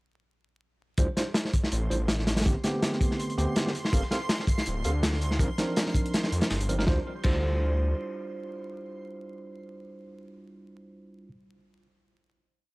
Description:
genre	drum and bass, jungle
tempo	163 BPM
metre	4/4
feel	swing 54% on 16ths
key	D minor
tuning	A4 = 440 Hz
part	tine electric piano	stabs	1.0-11.3 s	D3 to F5	-33 LUFS	right 1 dB	dub echo
part	detuned saw bass	bass	1.0-7.9 s	D1 to F2	-28 LUFS	equal	none
part	crunchy breakbeat drum kit	drums	1.0-7.4 s	crash cymbal, hi-hat, kick drum, snare drum	-27 LUFS	equal	none
part	backwards swelling texture	texture	1.7-6.9 s	C6	-41 LUFS	right 1 dB	built-in reverb
part	breakbeat sampler-style drum kit	drums	3.9-6.8 s	hi-hat, snare drum, tambourine	-39 LUFS	equal	high-pass filter on perc, high-pass filter on snare, high-pass filter on hats
room	light reverb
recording	dry, gritty hardware recording, vinyl crackle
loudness	-25 LUFS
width	side -23 dB against mid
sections	1.0-6.9 drop; 6.9-9.8 final chord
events	drop 1.0-6.9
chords	1.0 Dm11; 2.5 Am11; 3.9 Gm11; 5.4 Cm11; 6.9 Dm11

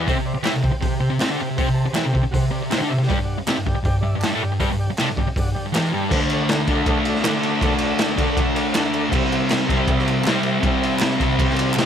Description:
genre	garage rock duo or trio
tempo	159 BPM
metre	4/4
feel	straight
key	unclear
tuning	A4 = 440 Hz
part	overdriven combo organ	sustained chords	0.0-11.9 s	G4 to A5	-30 LUFS	right 1 dB	none
part	fuzz guitar	riff	0.0-11.9 s	E2 to E4	-20 LUFS	equal	distortion
part	raw garage drum kit	drums	0.1-11.9 s	crash cymbal, hi-hat, kick drum, ride cymbal, snare drum	-22 LUFS	equal	none
part	group handclap	percussion	0.4-11.8 s	none	-31 LUFS	right 4 dB	none
room	light reverb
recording	none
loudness	-18 LUFS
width	side -8 dB against mid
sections	0.0-6.1 A section; 6.1-11.9 B section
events	none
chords	0.1 C5; 3.1 G5; 6.1 D; 9.1 C

